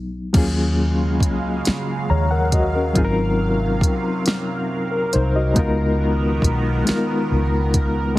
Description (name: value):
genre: slow six-eight R&B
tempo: 46 BPM (dotted quarters)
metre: 6/8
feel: straight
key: Eb minor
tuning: A4 = 440 Hz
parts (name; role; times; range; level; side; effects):
- reed electric piano; accompaniment; 0.0-8.2 s; Gb3 to Bb5; -21 LUFS; left 2 dB; fast tremolo
- vintage muted fingered electric bass; bass; 0.0-8.2 s; Ab1 to Eb2; -21 LUFS; equal; none
- lush unison pad; sustained chords; 0.3-8.2 s; C3 to F5; -27 LUFS; right 3 dB; chorus, phaser
- smooth R&B drum kit; drums; 0.3-7.9 s; crash cymbal, hi-hat, kick drum, snare drum; -20 LUFS; equal; none
room: light reverb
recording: heavily compressed radio sound, multiband compression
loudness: -17 LUFS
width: side -17 dB against mid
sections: 0.3-8.2 A section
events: none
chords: 0.3 Ebm11; 3.0 Ab13; 5.6 Db13